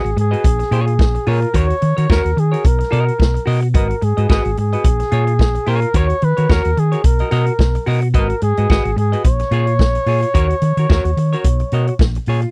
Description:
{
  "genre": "disco",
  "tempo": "109 BPM",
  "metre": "4/4",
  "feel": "swing 56% on 16ths",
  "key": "Eb minor",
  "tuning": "A4 = 440 Hz",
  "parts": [
    { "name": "breathy flugelhorn", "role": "melody", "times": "0.0-12.0 s", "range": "Ab4 to Db5", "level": "-23 LUFS", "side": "equal", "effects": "none" },
    { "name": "semi-hollow electric guitar", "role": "accompaniment", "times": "0.0-12.5 s", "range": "F4 to Eb5", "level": "-25 LUFS", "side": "equal", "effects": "none" },
    { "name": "hollow-body short-scale fingered electric bass", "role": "bass", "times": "0.0-12.4 s", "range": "Ab1 to Eb3", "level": "-19 LUFS", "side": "equal", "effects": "none" },
    { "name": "vintage drum kit", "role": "drums", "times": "0.1-12.5 s", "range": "hi-hat, kick drum, snare drum", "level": "-17 LUFS", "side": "equal", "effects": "none" }
  ],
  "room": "little or no reverb",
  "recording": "dry, close 1970s-style studio recording",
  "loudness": "-16 LUFS",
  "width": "mono",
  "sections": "0.0-12.5 A section",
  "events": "none",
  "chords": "0.4 Bbm7; 1.5 Ebm7; 2.6 Bmaj7; 3.7 Abm7; 4.8 Bbm7; 5.9 Ebm7; 7.0 Bmaj7; 8.1 Abm7; 9.2 Bbm7; 10.3 Ebm7; 11.4 Bmaj7; 12.0 Bbm7"
}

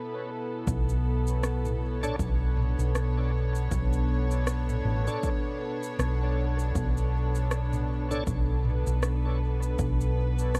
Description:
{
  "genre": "ambient dub",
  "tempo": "79 BPM",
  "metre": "4/4",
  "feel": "swing 58% on 16ths",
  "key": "B minor",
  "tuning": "A4 = 440 Hz",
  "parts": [
    { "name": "dark symphonic string section", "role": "sustained chords", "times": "0.0-10.6 s", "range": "B2 to C#5", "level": "-36 LUFS", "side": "equal", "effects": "none" },
    { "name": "hollow-body short-scale fingered electric bass", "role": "bass", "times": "0.7-10.6 s", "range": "A1 to B1", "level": "-29 LUFS", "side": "equal", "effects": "none" },
    { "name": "electronic kick drum", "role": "drums", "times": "0.7-10.0 s", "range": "none", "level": "-34 LUFS", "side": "equal", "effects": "overdrive" },
    { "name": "organic electronic drum kit", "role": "drums", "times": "0.7-10.6 s", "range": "rim click, shaker, toms", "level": "-38 LUFS", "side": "equal", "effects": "dub echo" },
    { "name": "bright tonewheel organ", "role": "stabs", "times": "2.0-8.2 s", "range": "D4 to C#5", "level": "-41 LUFS", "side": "equal", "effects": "overdrive, chorus vibrato, slow rotary speaker, dub echo" }
  ],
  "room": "little or no reverb",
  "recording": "none",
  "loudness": "-28 LUFS",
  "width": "mono",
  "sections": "0.7-10.6 A section",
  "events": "break 0.0-0.7",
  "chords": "0.0 Asus2; 0.7 Bm9"
}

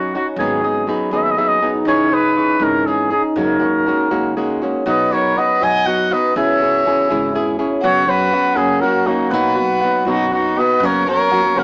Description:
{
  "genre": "mexican folk, mariachi",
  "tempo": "80 BPM (dotted quarters)",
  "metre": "6/8",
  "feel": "rubato",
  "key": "B major",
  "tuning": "A4 = 443 Hz",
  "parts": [
    { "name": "warm trumpet", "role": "melody", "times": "0.0-11.6 s", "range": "F#4 to G#5", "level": "-20 LUFS", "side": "equal", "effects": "cassette tape" },
    { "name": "flamenco guitar", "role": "accompaniment", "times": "0.0-11.6 s", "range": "F#2 to G#4", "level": "-23 LUFS", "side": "equal", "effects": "cassette tape" },
    { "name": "concert harp", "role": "arpeggios", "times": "0.0-11.6 s", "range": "A#3 to G#6", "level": "-24 LUFS", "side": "equal", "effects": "cassette tape" },
    { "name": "upright bass", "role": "bass", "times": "0.0-11.6 s", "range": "G#1 to F#2", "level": "-32 LUFS", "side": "equal", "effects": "none" },
    { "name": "warm violin", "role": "second line", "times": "4.9-11.6 s", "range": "C#4 to D#5", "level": "-23 LUFS", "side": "equal", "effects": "cassette tape" }
  ],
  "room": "moderate studio reverb, RT60 0.5 s",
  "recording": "home recording on cassette, small speaker sound",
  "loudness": "-17 LUFS",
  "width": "mono",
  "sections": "0.0-10.8 A section",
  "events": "none",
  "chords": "0.4 G#m7; 1.9 C#madd9; 3.4 F#add9; 4.9 B; 6.4 C#m; 7.8 F#sus4; 8.6 F#; 9.3 B; 10.8 F#"
}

